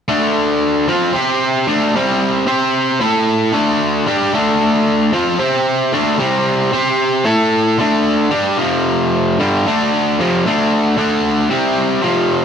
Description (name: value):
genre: rock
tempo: 113 BPM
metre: 4/4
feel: straight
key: D minor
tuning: A4 = 442 Hz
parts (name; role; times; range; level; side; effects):
- crunchy overdriven guitar; solo; 0.1-12.4 s; F2 to C5; -13 LUFS; equal; none
room: light reverb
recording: band playing live in one room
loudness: -13 LUFS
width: side -7 dB against mid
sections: 0.1-12.4 A section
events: none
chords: 0.1 Dm; 1.1 C5; 1.7 D5; 1.9 C5; 3.0 A5; 3.5 Dm; 5.4 C5; 5.9 D5; 6.2 C5; 7.3 A5; 7.8 D5; 8.6 F5; 9.7 D5; 10.2 F5; 10.5 D5; 11.5 C5